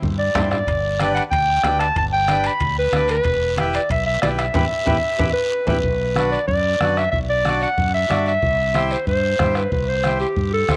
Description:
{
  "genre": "latin, cumbia",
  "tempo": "186 BPM",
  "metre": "4/4",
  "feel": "straight",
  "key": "unclear",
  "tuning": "A4 = 440 Hz",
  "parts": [
    { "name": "mellow fretless electric bass", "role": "bass", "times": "0.0-10.8 s", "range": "E1 to G2", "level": "-27 LUFS", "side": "equal", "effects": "none" },
    { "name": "bombo", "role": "percussion", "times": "0.0-10.8 s", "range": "none", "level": "-29 LUFS", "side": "equal", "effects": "none" },
    { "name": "congas", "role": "percussion", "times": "0.0-10.8 s", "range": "none", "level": "-30 LUFS", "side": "equal", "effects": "none" },
    { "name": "guiro", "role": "percussion", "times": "0.0-10.8 s", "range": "none", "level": "-37 LUFS", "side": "equal", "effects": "none" },
    { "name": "clear clarinet", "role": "melody", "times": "0.2-10.8 s", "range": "G4 to B5", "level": "-22 LUFS", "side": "equal", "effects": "none" },
    { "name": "accordion", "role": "accompaniment", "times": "0.3-10.8 s", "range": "D4 to D5", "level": "-29 LUFS", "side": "equal", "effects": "none" },
    { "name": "timbales", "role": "percussion", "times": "0.7-5.7 s", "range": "none", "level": "-34 LUFS", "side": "equal", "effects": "none" }
  ],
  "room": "light reverb",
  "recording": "none",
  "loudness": "-19 LUFS",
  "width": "mono",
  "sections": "0.0-5.8 A section; 5.8-10.8 A section",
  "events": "drum fill 0.0-0.7, 4.9-5.8; band accent 4.5-5.8; accordion fill 5.2-5.8",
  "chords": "0.0 Cadd9; 0.7 G; 3.3 Em; 5.8 Bm; 8.4 C"
}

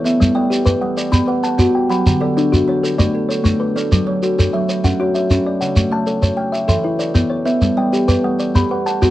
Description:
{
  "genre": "southern african traditional, mbira-style interlocking cycle",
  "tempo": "130 BPM (dotted quarters)",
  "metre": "12/8",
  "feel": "straight",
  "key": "unclear",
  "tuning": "A4 = 443 Hz",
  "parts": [
    { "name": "kalimba", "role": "arpeggios", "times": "0.0-9.1 s", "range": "D3 to B5", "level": "-18 LUFS", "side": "left 3 dB", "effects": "none" },
    { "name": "kalimba", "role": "arpeggios", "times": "0.0-9.1 s", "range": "C#3 to F#5", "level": "-19 LUFS", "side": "right 3 dB", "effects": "none" },
    { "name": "shekere", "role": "percussion", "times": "0.1-9.1 s", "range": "none", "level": "-16 LUFS", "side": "right 1 dB", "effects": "none" }
  ],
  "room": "moderate studio reverb, RT60 0.5 s",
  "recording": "worn, warbling old tape, cassette tape, warbly pitch drift",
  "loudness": "-14 LUFS",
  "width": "side -15 dB against mid",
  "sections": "0.0-9.1 A section",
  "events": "none",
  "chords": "0.2 G; 1.1 Bm; 2.1 D; 3.9 F#m; 5.8 A; 6.7 Em; 7.6 G; 8.6 Bm"
}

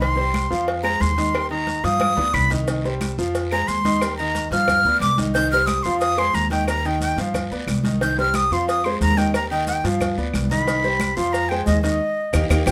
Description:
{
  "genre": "latin, salsa",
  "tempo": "180 BPM",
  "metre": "4/4",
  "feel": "straight",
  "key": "C minor",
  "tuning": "A4 = 440 Hz",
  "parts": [
    { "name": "breathy bright jazz flute", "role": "melody", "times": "0.0-12.7 s", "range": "Eb5 to G6", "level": "-24 LUFS", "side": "equal", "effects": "none" },
    { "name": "bright upright piano", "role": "accompaniment", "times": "0.0-12.7 s", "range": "Eb3 to F5", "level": "-27 LUFS", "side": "equal", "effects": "none" },
    { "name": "upright bass", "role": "bass", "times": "0.0-12.7 s", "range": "G1 to G2", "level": "-27 LUFS", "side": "equal", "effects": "none" },
    { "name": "congas", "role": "percussion", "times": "0.0-12.7 s", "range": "none", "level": "-30 LUFS", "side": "equal", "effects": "none" },
    { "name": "cowbell", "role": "percussion", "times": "0.0-12.7 s", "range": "none", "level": "-32 LUFS", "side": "equal", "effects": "none" },
    { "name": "guiro", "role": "percussion", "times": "0.0-12.7 s", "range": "none", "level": "-40 LUFS", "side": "equal", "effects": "none" },
    { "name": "claves", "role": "percussion", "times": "0.3-12.7 s", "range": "none", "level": "-36 LUFS", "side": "equal", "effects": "none" },
    { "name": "maracas", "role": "percussion", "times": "2.7-12.7 s", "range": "none", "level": "-41 LUFS", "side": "equal", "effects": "none" }
  ],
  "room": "moderate studio reverb, RT60 0.5 s",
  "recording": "none",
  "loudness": "-21 LUFS",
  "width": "mono",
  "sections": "0.0-12.7 A section",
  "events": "flute solo 0.0-12.7; drum fill 2.0-2.7, 12.0-12.7; band accent 12.0-12.7",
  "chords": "0.0 Cm; 0.7 Fm; 1.3 Eb; 2.0 G7; 2.7 Cm; 3.3 Fm; 4.0 Eb; 4.7 G7; 5.3 Cm; 6.0 Fm; 6.7 Eb; 7.3 G7; 8.0 Cm; 8.7 Fm; 9.3 Eb; 10.0 G7; 10.7 Cm; 11.3 Fm; 12.0 Eb"
}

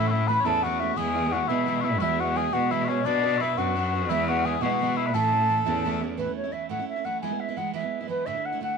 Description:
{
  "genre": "celtic folk, Celtic jig",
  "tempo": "115 BPM (dotted quarters)",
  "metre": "6/8",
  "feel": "straight",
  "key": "A major",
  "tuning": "A4 = 440 Hz",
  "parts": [
    { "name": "mellow wooden flute", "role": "melody", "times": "0.0-8.8 s", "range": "B4 to B5", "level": "-27 LUFS", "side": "equal", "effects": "none" },
    { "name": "mellow small bagpipes", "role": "second line", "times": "0.0-6.0 s", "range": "C#4 to C#5", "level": "-29 LUFS", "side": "left 14 dB", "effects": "none" },
    { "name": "picked steel-string acoustic guitar", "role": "accompaniment", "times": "0.0-8.8 s", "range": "D2 to B4", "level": "-31 LUFS", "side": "right 13 dB", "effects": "none" },
    { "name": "clear cello", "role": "bass", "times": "0.0-6.1 s", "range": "E2 to B2", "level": "-28 LUFS", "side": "left 1 dB", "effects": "none" }
  ],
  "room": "light reverb, small room ambience",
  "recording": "1960s-style stereo with parts hard left and right",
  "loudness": "-23 LUFS",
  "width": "side -5 dB against mid",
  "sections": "0.0-6.2 A section; 6.2-8.8 B section",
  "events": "none",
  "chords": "0.0 A; 1.0 E; 2.0 Eadd9; 3.1 Bm; 4.1 E; 5.1 A; 7.2 E; 8.3 Dsus2"
}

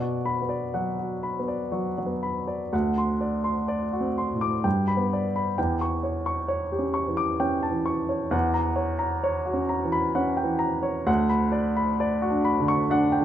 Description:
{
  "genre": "classical, romantic character piece for solo piano",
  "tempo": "65 BPM",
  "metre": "3/4",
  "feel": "uneven beats, rubato",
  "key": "B minor",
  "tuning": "A4 = 440 Hz",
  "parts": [
    { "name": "warm baby grand piano", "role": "solo", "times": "0.0-13.2 s", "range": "D2 to D6", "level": "-23 LUFS", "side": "equal", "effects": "none" }
  ],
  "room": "moderate recital hall reverb, RT60 1.6 s",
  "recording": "close, detailed microphones",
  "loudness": "-23 LUFS",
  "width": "side -10 dB against mid",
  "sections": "0.0-2.7 A section; 2.7-13.2 B section",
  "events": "none",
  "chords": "0.0 Bm; 2.7 D7; 4.6 G; 5.6 C#dim/E; 8.3 F#7/E; 11.1 Bm/D"
}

